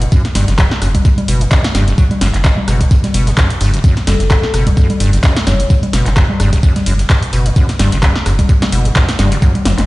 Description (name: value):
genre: acid house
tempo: 129 BPM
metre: 4/4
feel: swing 56% on 16ths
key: F# phrygian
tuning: A4 = 441 Hz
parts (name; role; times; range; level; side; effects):
- deep acid bass; riff; 0.0-9.7 s; F#1 to F#3; -17 LUFS; equal; analog chorus, cassette tape, tape echo
- round analog bass; bass; 0.0-9.9 s; F#1; -15 LUFS; equal; sidechain pumping
- punchy analog drum machine; drums; 0.0-9.9 s; congas, handclaps, hi-hat, rim click, snare drum, toms; -18 LUFS; equal; none
- breakbeat sampler-style drum kit; drums; 0.1-9.9 s; hi-hat, snare drum, tambourine; -30 LUFS; left 1 dB; high-pass filter on hats, high-pass filter on perc, high-pass filter on snare
- electronic kick drum; drums; 0.1-9.5 s; none; -11 LUFS; equal; overdrive
- vibraphone with soft mallets; melody; 4.1-5.7 s; A4 to C#5; -24 LUFS; left 4 dB; ping-pong delay
room: light reverb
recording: played on a big sound system in a bare room, stone room reverb, nothing above 11.0 kHz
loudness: -10 LUFS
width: side -19 dB against mid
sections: 0.0-9.9 A section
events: drum fill 9.7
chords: none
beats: 0.12 0.58 | 1.05 1.51 1.98 2.44 | 2.91 3.38 3.84 4.31 | 4.77 5.24 5.70 6.17 | 6.63 7.10 7.56 8.03 | 8.49 8.96 9.42